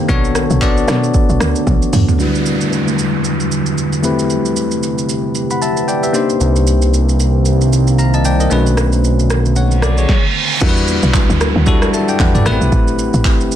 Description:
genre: amapiano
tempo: 114 BPM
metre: 4/4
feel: swing 58% on 16ths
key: E minor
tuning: A4 = 439 Hz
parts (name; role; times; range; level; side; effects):
- bell-like tine electric piano; accompaniment; 0.0-13.6 s; F#3 to B5; -18 LUFS; left 3 dB; low-pass filter
- deep dark ambient pad; sustained chords; 0.0-13.6 s; E2 to B4; -20 LUFS; right 1 dB; chorus, built-in reverb, sidechain pumping, low-pass filter
- tight log drum bass; bass; 0.1-2.1, 10.6-13.5 s; A1 to B2; -17 LUFS; equal; none
- deep house drum kit; drums; 0.1-13.6 s; crash cymbal, handclaps, hi-hat, kick drum, rim click, shaker, snare drum, toms; -17 LUFS; right 1 dB; overdrive, vintage 12-bit sampler grit
- downlifter and reverse cymbal; sound effects; 2.2-13.6 s; none; -23 LUFS; right 4 dB; none
- fat analog bass; bass; 6.4-10.1 s; B1 to C2; -12 LUFS; equal; none
room: digital ambience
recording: dense, heavily limited modern master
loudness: -12 LUFS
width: side -10 dB against mid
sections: 0.0-2.2 A section; 2.2-10.6 B section; 10.6-13.6 C section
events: drop 0.0-2.2; drum fill 1.7-2.2; filter sweep 2.2-10.6; reverse cymbal 9.8-10.6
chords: 0.1 Bm9; 2.2 Em9; 4.0 Am9; 6.1 Cm9; 8.5 Bm9; 10.6 Em9; 12.5 Am9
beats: | 0.09 0.62 1.14 1.67 | 2.19 2.72 3.25 3.77 | 4.30 4.83 5.35 5.88 | 6.41 6.93 7.46 7.98 | 8.51 9.04 9.56 10.09 | 10.62 11.14 11.67 12.20 | 12.72 13.25

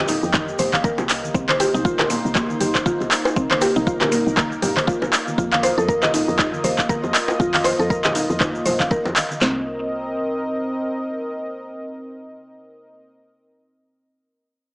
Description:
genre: afro house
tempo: 119 BPM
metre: 4/4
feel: swing 57% on 16ths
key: C minor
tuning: A4 = 441 Hz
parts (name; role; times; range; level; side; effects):
- warm analog pad; sustained chords; 0.0-13.0 s; Bb3 to Eb5; -26 LUFS; equal; chorus, sidechain pumping
- mallet-like synth pluck; arpeggios; 0.0-9.6 s; Bb3 to F5; -22 LUFS; equal; chorus, sidechain pumping, tape echo
- woody FM bass; bass; 0.0-10.9 s; F1 to F2; -28 LUFS; equal; sidechain pumping
- deep house drum kit; drums; 0.1-9.3 s; handclaps, hi-hat; -22 LUFS; equal; overdrive
- congas; percussion; 0.1-9.4 s; none; -31 LUFS; equal; none
- tube shaker; percussion; 0.1-9.4 s; none; -35 LUFS; equal; none
- deep house drum kit; drums; 0.3-9.6 s; handclaps, kick drum, snare drum; -24 LUFS; equal; overdrive
- bongos; percussion; 0.7-9.1 s; none; -26 LUFS; equal; none
room: light reverb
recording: small speaker sound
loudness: -18 LUFS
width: side -32 dB against mid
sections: 0.0-9.4 A section; 9.4-13.4 B section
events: drop 0.0-9.4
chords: 0.0 F7sus4; 1.3 Cm7; 5.4 F7sus4; 9.4 Cm7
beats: 0.34 0.84 | 1.35 1.85 2.36 2.86 | 3.36 3.87 4.37 4.88 | 5.38 5.88 6.39 6.89 | 7.40 7.90 8.41 8.91 | 9.41 9.92 10.42 10.93 | 11.43 11.94 12.44 12.94

